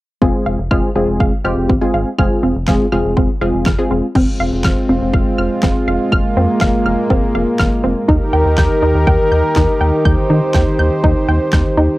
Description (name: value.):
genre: synth-pop.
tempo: 122 BPM.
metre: 4/4.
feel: straight.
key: F minor.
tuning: A4 = 440 Hz.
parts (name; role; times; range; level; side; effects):
funky polysynth comp; accompaniment; 0.2-4.1 s; Ab3 to Ab4; -17 LUFS; equal; chorus, cassette tape.
wide unison pluck; arpeggios; 0.2-11.9 s; C4 to G6; -20 LUFS; equal; cassette tape, analog delay.
rubbery square bass; bass; 0.2-11.9 s; F1 to Eb3; -18 LUFS; equal; none.
pop drum kit; drums; 0.2-11.6 s; crash cymbal, kick drum, snare drum; -16 LUFS; equal; cassette tape.
warm analog pad; sustained chords; 4.2-12.0 s; Eb3 to C5; -16 LUFS; equal; chorus, cassette tape.
room: light reverb.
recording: home recording on cassette.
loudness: -12 LUFS.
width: side -18 dB against mid.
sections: 0.2-4.2 A section; 4.2-12.0 B section.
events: none.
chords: 0.2 Fm; 8.1 Eb.